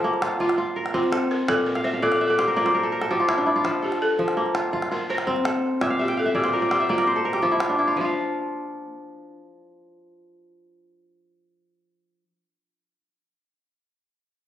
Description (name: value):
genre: west african traditional, West African string and xylophone music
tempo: 111 BPM (dotted quarters)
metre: 12/8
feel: straight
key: unclear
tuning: A4 = 440 Hz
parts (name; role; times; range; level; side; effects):
- balafon; melody; 0.0-12.2 s; F4 to C5; -26 LUFS; left 1 dB; none
- kora; arpeggios; 0.0-12.3 s; Bb2 to G5; -22 LUFS; equal; none
- calabash; percussion; 0.0-8.1 s; none; -31 LUFS; equal; none
room: moderate recital hall reverb, RT60 1.3 s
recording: recorded on a phone in the room, club reverb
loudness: -20 LUFS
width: side -11 dB against mid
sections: 0.0-8.0 A section; 8.0-12.3 B section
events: kora fill 1.8-3.6, 5.8-8.0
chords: 0.0 F; 1.5 Bb5; 3.6 F; 5.8 Bb5; 8.0 N.C.